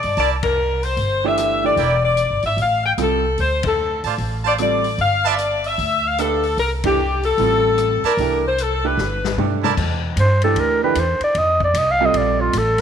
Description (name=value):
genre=jazz, big band swing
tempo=150 BPM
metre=4/4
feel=swing 64% on 8ths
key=C mixolydian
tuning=A4 = 441 Hz
part: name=bright saxophone section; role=melody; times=0.0-9.4 s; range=G4 to G5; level=-18 LUFS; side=left 4 dB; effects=none
part: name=upright bass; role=bass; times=0.0-12.8 s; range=E1 to A2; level=-23 LUFS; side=right 1 dB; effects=none
part: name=swinging big-band drum kit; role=drums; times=0.0-12.8 s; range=crash cymbal, hi-hat, kick drum, ride cymbal, rim click, snare drum, toms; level=-29 LUFS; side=left 6 dB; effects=none
part: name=brilliant trumpet section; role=stabs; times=0.2-5.3, 8.0-9.7 s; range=E4 to A5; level=-24 LUFS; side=right 10 dB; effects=none
part: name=clear baby grand piano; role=accompaniment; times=1.2-12.5 s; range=E3 to B4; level=-24 LUFS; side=right 13 dB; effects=none
part: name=growling clarinet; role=melody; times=10.2-12.8 s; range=F4 to F5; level=-17 LUFS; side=equal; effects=none
room=moderate echo chamber reverb, RT60 1.7 s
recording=1960s-style stereo with parts hard left and right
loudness=-16 LUFS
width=side -8 dB against mid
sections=0.0-9.8 A section; 9.8-12.8 B section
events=band accent 0.4, 3.6, 6.8; drum fill 9.0-9.8; clarinet solo 9.8-12.8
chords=0.2 C13; 1.8 Em7b5; 2.6 Am7; 3.4 Dm7; 5.0 G13; 6.6 C69; 7.4 Am7; 8.2 C69; 9.0 Gadd9; 9.8 D9sus4; 11.4 Fadd9